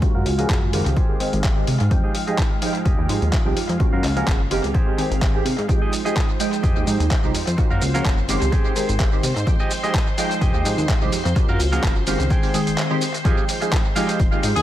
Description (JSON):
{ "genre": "filtered disco house", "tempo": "127 BPM", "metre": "4/4", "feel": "swing 55% on 16ths", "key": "F minor", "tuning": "A4 = 440 Hz", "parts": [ { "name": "funky polysynth comp", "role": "accompaniment", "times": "0.0-14.6 s", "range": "Eb3 to G5", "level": "-24 LUFS", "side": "right 1 dB", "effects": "chorus, phaser, sidechain pumping, low-pass filter, tape echo" }, { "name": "string machine, full ensemble", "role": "sustained chords", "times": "0.0-14.6 s", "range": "Ab3 to C6", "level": "-31 LUFS", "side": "equal", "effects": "ensemble chorus, sidechain pumping, low-pass filter" }, { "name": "semi-hollow electric guitar", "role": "riff", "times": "0.0-14.6 s", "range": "Gb4 to G5", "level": "-29 LUFS", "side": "right 2 dB", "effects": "sidechain pumping, low-pass filter, tape echo" }, { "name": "plucky analog bass", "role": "bass", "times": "0.0-14.6 s", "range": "F1 to C3", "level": "-23 LUFS", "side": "equal", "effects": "sidechain pumping, low-pass filter" }, { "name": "dusty soul sampler-style drum kit", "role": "drums", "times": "0.0-14.6 s", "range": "handclaps, hi-hat, shaker", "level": "-28 LUFS", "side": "equal", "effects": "overdrive, sidechain pumping on hats, sidechain pumping on perc, tape echo" }, { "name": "electronic kick drum", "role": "drums", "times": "0.0-14.3 s", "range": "none", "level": "-20 LUFS", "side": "equal", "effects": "none" }, { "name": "bright horn section", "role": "melody", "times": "14.6 s", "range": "Ab4", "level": "-18 LUFS", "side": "left 2 dB", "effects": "sidechain pumping, low-pass filter" } ], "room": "light reverb", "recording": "echo-heavy mix", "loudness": "-18 LUFS", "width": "side -13 dB against mid", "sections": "0.0-13.3 A section; 13.3-14.6 B section", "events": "filter sweep 0.0-13.3; drop 13.3-14.6", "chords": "0.0 Gbmaj7; 1.0 Abmaj7; 1.9 Fm9; 3.8 Gbmaj7; 4.7 Abmaj7; 5.7 Fm9; 7.6 Gbmaj7; 8.5 Abmaj7; 9.5 Fm9; 11.4 Gbmaj7; 12.3 Abmaj7; 13.3 Fm9", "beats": "| 0.02 0.50 0.97 1.44 | 1.91 2.38 2.86 3.33 | 3.80 4.28 4.75 5.22 | 5.69 6.17 6.64 7.11 | 7.58 8.05 8.53 9.00 | 9.47 9.94 10.42 10.89 | 11.36 11.83 12.31 12.78 | 13.25 13.72 14.20" }